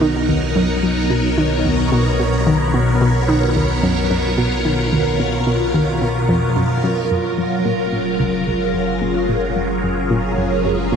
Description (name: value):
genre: ambient, sequencer-driven space music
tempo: 110 BPM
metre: 4/4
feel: straight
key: B lydian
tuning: A4 = 439 Hz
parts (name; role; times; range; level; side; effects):
- phased string machine; sustained chords; 0.0-11.0 s; B2 to C#5; -18 LUFS; equal; ensemble chorus, phaser
- analog pluck; riff; 0.0-11.0 s; C#2 to D#3; -20 LUFS; equal; chorus, ping-pong delay
- round analog bass; bass; 0.0-11.0 s; F#1 to B1; -25 LUFS; equal; none
- pulsing gated texture; texture; 8.3-11.0 s; none; barely audible; none; none
room: wet cathedral reverb, RT60 6.6 s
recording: in a vast, echoing space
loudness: -15 LUFS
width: side -7 dB against mid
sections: 0.0-7.1 A section; 7.1-11.0 B section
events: filter sweep on synth arpeggio sound 0.0-7.1, 7.1-11.0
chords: 0.0 Bmaj7; 7.1 F#maj7